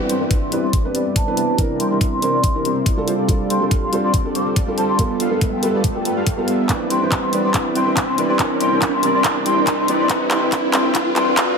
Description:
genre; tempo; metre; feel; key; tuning
future bass; 141 BPM; 4/4; half-time; C major; A4 = 441 Hz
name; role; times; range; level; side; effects
felt-muted upright piano; accompaniment; 0.0-11.6 s; E3 to B4; -23 LUFS; right 2 dB; sidechain pumping, digital delay
shimmering ambient pad; sustained chords; 0.1-11.6 s; F2 to D5; -30 LUFS; equal; chorus, built-in reverb, sidechain pumping
soft supersaw; riff; 0.0-11.6 s; G3 to G5; -22 LUFS; left 1 dB; cassette tape, sidechain pumping, low-pass filter, digital delay
riser; sound effects; 0.0-11.6 s; none; -27 LUFS; right 2 dB; none
mellow hollow baroque flute; melody; 0.1-11.3 s; G5 to D6; -23 LUFS; left 1 dB; sidechain pumping, low-pass filter, ping-pong delay
dubstep drum kit; drums; 0.1-11.5 s; handclaps, hi-hat; -22 LUFS; equal; none
electronic kick drum; drums; 0.3-11.5 s; none; -20 LUFS; equal; none
room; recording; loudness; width
moderate digital room reverb, RT60 1.2 s, digital ambience; high-pass filter; -16 LUFS; side -5 dB against mid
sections
0.0-11.6 A section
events
build-up 0.0-11.6; riser 0.0-11.6; filter sweep on supersaw synth 0.0-11.6; filter sweep on flute 0.0-11.6; filter sweep on ambient pad 0.0-11.6; drum fill 6.7-11.6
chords
0.0 Cmaj9; 1.6 C9; 3.1 F69; 5.0 G9; 6.7 Cmaj9; 8.4 C9; 9.9 F69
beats
0.31 0.73 1.16 | 1.58 2.01 2.44 2.86 | 3.29 3.71 4.14 4.56 | 4.99 5.42 5.84 6.27 | 6.69 7.12 7.54 7.97 | 8.39 8.82 9.24 9.67 | 10.10 10.52 10.95 11.37

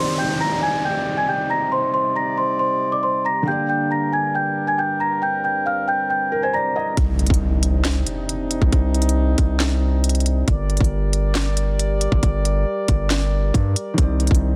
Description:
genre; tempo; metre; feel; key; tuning
hip hop, trap; 137 BPM; 4/4; half-time; C minor; A4 = 442 Hz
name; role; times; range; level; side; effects
celesta; melody; 0.0-7.0 s; C5 to Bb6; -22 LUFS; equal; none
felt-muted upright piano; accompaniment; 0.0-7.0, 13.9-14.6 s; D3 to Eb5; -29 LUFS; equal; low-pass filter
mellow brass ensemble; sustained chords; 0.0-14.6 s; G2 to D5; -30 LUFS; equal; none
downlifter and impact; sound effects; 0.0-3.5, 7.1-8.7 s; none; -32 LUFS; equal; none
hard-hitting 808-style bass; bass; 7.0-14.6 s; G1 to G2; -22 LUFS; equal; none
trap drum kit; drums; 7.0-14.4 s; handclaps, hi-hat, kick drum, snare drum; -23 LUFS; equal; none
room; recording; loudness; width
small room ambience; dense, heavily limited modern master; -20 LUFS; mono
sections
0.0-7.0 A section; 7.0-14.6 B section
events
impact 7.0-8.7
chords
0.0 Cmadd9; 3.5 Gm; 7.0 Cmadd9; 10.5 Gm; 14.0 Cmadd9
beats
0.40 0.84 1.28 | 1.72 2.16 2.59 3.03 | 3.47 3.91 4.35 4.78 | 5.22 5.66 6.10 6.54 | 6.97 7.41 7.85 8.29 | 8.72 9.16 9.60 10.04 | 10.48 10.91 11.35 11.79 | 12.23 12.67 13.11 13.54 | 13.98 14.42

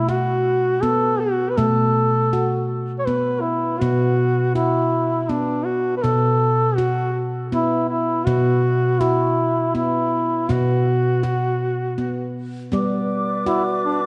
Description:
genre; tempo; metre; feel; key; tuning
world meditative; 81 BPM; 3/4; swing 55% on 16ths; B minor pentatonic; A4 = 440 Hz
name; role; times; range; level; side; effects
dark duduk; melody; 0.0-14.0 s; D4 to C#5; -23 LUFS; equal; diffuse ambient delay
handpan; arpeggios; 0.0-14.1 s; B2 to F#4; -24 LUFS; equal; none
small flute group; sustained chords; 12.7-14.1 s; B4 to D6; -26 LUFS; equal; none
room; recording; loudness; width
wet echo chamber reverb, RT60 1.7 s, studio reverb; nothing above 10.8 kHz; -20 LUFS; mono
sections
0.0-12.7 A section; 12.7-14.1 B section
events
none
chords
0.0 F#m/B; 3.8 B5; 12.7 G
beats
0.09 0.83 | 1.58 2.32 3.06 | 3.81 4.55 5.29 | 6.04 6.78 7.52 | 8.26 9.01 9.75 | 10.49 11.23 11.98 | 12.72 13.46

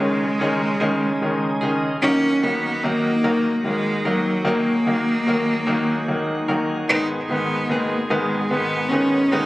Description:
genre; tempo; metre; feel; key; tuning
six-eight pop ballad; 49 BPM (dotted quarters); 6/8; straight; unclear; A4 = 440 Hz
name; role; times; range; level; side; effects
clear cello; melody; 0.0-9.5 s; F#3 to D#4; -21 LUFS; equal; tape echo
clear baby grand piano; accompaniment; 0.0-9.5 s; D#3 to C#4; -23 LUFS; equal; none
bright tonewheel organ; sustained chords; 0.0-9.5 s; C#2 to A#4; -29 LUFS; right 1 dB; overdrive, slow rotary speaker
direct-recorded clean electric guitar; arpeggios; 0.0-9.5 s; G#2 to A#4; -28 LUFS; left 1 dB; lush chorus
room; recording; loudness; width
little or no reverb; recorded on a phone in the room, club reverb, compression; -18 LUFS; side -18 dB against mid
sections
0.0-9.5 A section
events
none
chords
0.0 C#sus2; 2.0 D#m; 6.9 G#m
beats
0.80 | 2.02 3.24 | 4.46 5.67 | 6.89 8.11 | 9.33

